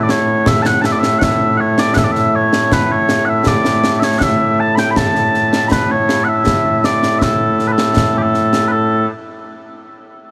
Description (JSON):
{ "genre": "scottish traditional, Scottish pipe music", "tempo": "80 BPM", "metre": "2/4", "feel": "straight", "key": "A major", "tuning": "A4 = 439 Hz", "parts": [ { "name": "mellow small bagpipes", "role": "melody", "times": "0.0-9.1 s", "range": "A2 to B5", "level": "-16 LUFS", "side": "equal", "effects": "slapback echo" }, { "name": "concert snare drum and concert bass drum", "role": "drums", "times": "0.1-8.7 s", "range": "none", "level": "-20 LUFS", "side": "equal", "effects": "none" } ], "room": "light reverb", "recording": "heavily compressed radio sound", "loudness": "-14 LUFS", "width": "mono", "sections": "0.0-8.7 A section; 8.7-10.2 B section", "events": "none", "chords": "none", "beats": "0.47 | 1.22 1.97 | 2.71 3.46 | 4.21 4.96 | 5.71 6.46 | 7.21 7.96 | 8.71" }